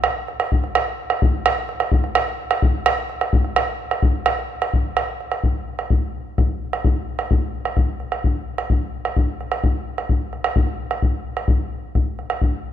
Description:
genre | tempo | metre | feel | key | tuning
andean folk | 86 BPM (dotted quarters) | 6/8 | straight | none | none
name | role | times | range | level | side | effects
bombo | percussion | 0.0-12.5 s | none | -19 LUFS | equal | none
room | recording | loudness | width
moderate scoring stage reverb, RT60 1.9 s | minimal, uncompressed stereo recording | -19 LUFS | side -10 dB against mid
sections
0.0-5.4 A section; 5.4-12.7 B section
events
none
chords
none

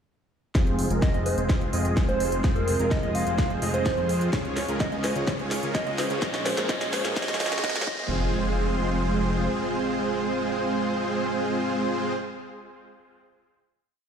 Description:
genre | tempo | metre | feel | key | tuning
EDM, festival progressive house | 127 BPM | 4/4 | straight | F minor | A4 = 440 Hz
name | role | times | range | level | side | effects
dense compressed supersaw | riff | 0.5-12.1 s | Ab3 to Eb5 | -27 LUFS | right 1 dB | sidechain pumping, low-pass filter, dub echo
fat analog bass | bass | 0.6-9.5 s | F1 to F2 | -29 LUFS | equal | sidechain pumping
electronic kick drum | drums | 0.6-8.0 s | none | -26 LUFS | equal | small room ambience
house drum kit | drums | 0.6-8.0 s | crash cymbal, hi-hat, snare drum | -32 LUFS | equal | high-pass filter on snare, small room ambience, high-pass filter on hats, high-pass filter on cymbals
riser and impact | sound effects | 3.5-12.2 s | none | -37 LUFS | equal | none
soft struck synth lead | melody | 1.0-8.1 s | Bb4 to F5 | -31 LUFS | right 1 dB | chorus, tremolo, dub echo
room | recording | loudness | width
light reverb | played on a big sound system in a bare room, large studio reverb, high-pass filter | -23 LUFS | side -7 dB against mid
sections
0.6-8.1 build; 8.1-11.9 final note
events
build-up 0.6-8.1; drum fill 0.6-8.1; filter sweep on supersaw synth 0.6-8.1; filter sweep 0.6-8.1; riser 3.5-8.1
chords
0.6 Fm; 4.3 Db; 6.2 Bbm7; 7.9 Fm

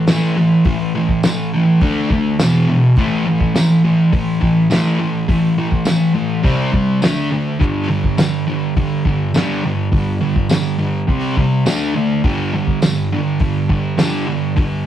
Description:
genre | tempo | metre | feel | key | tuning
garage rock duo or trio | 104 BPM | 4/4 | straight | unclear | A4 = 439 Hz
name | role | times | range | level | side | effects
fuzz guitar | riff | 0.0-14.8 s | E2 to D4 | -15 LUFS | equal | distortion
cloth-damped thuddy drum kit | drums | 0.1-14.7 s | hi-hat, kick drum, snare drum | -17 LUFS | equal | none
tambourine | percussion | 0.1-14.1 s | none | -29 LUFS | right 1 dB | none
room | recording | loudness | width
wet studio reverb, RT60 0.5 s | rough rehearsal-room recording, cassette tape | -14 LUFS | side -11 dB against mid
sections
0.0-14.9 A section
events
none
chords
0.0 A5; 1.8 D5; 2.4 E5; 3.0 A5; 6.4 C5; 7.0 D5; 7.6 G5; 11.1 C5; 11.7 D5; 12.2 G5

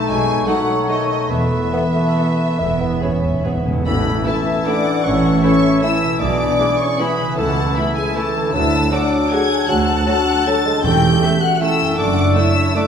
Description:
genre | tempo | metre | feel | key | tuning
classical, orchestral ballroom waltz | 131-170 BPM | 3/4 | rubato | A major | A4 = 440 Hz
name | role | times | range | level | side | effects
warm studio violin section | melody | 0.0-12.9 s | D#5 to A6 | -25 LUFS | left 2 dB | none
large flute ensemble | second line | 0.0-12.9 s | G#4 to A5 | -25 LUFS | left 2 dB | none
mellow clarinet | second line | 0.0-12.9 s | B3 to E4 | -26 LUFS | left 1 dB | none
warm symphonic violin section | second line | 0.0-12.9 s | C#5 to A5 | -26 LUFS | left 3 dB | none
mellow bassoon | accompaniment | 0.0-12.9 s | E3 to E4 | -25 LUFS | right 2 dB | none
mellow French horn section | sustained chords | 0.0-12.9 s | D#3 to A4 | -22 LUFS | left 3 dB | none
concert harp | arpeggios | 0.0-12.9 s | E2 to B5 | -27 LUFS | left 3 dB | none
dark cor anglais | second line | 0.1-12.9 s | G#4 to C#5 | -26 LUFS | equal | none
rich symphonic double bass section | bass | 0.1-12.3 s | E1 to D2 | -22 LUFS | right 4 dB | none
warm symphonic cello section | bass | 0.1-12.3 s | C#2 to B2 | -26 LUFS | right 3 dB | none
clear symphonic viola section | accompaniment | 0.5-12.8 s | G#3 to A4 | -29 LUFS | right 2 dB | none
timpani | percussion | 2.6-4.4, 10.8-11.4 s | E2 to A2 | -24 LUFS | equal | none
room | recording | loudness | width
wet recital hall reverb, RT60 1.3 s | recorded in a church or concert hall | -14 LUFS | side -7 dB against mid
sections
0.0-3.9 A section; 3.9-12.9 B section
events
timpani fill 2.6-3.9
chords
0.0 B7; 1.3 Esus4; 2.6 E; 3.9 A; 6.2 E7/B; 7.4 A/C#; 8.5 D; 10.8 A7/E; 12.0 D/F#

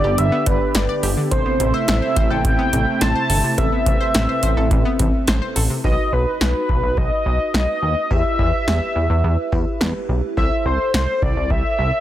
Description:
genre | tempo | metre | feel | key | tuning
synth-pop | 106 BPM | 4/4 | straight | unclear | A4 = 442 Hz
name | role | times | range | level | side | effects
octave-doubled lead | melody | 0.0-12.0 s | B4 to A5 | -22 LUFS | equal | chorus, digital delay
FM electric piano with soft pad layer | accompaniment | 0.0-12.0 s | C4 to D5 | -27 LUFS | equal | chorus
warm analog pad | sustained chords | 0.0-5.8 s | C3 to G4 | -26 LUFS | right 2 dB | chorus
analog pluck | arpeggios | 0.0-5.8 s | C3 to D5 | -27 LUFS | left 2 dB | chorus, digital delay
chorused synth bass | bass | 0.0-11.9 s | G1 to E2 | -20 LUFS | equal | none
electro analog drum machine | drums | 0.2-11.6 s | hi-hat, kick drum, snare drum | -22 LUFS | equal | none
room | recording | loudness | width
light reverb | dense, heavily limited modern master | -16 LUFS | side -12 dB against mid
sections
0.0-5.8 A section; 5.8-12.0 B section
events
none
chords
0.0 G; 1.3 Amadd9; 5.8 B; 8.1 Em; 10.4 Am/C

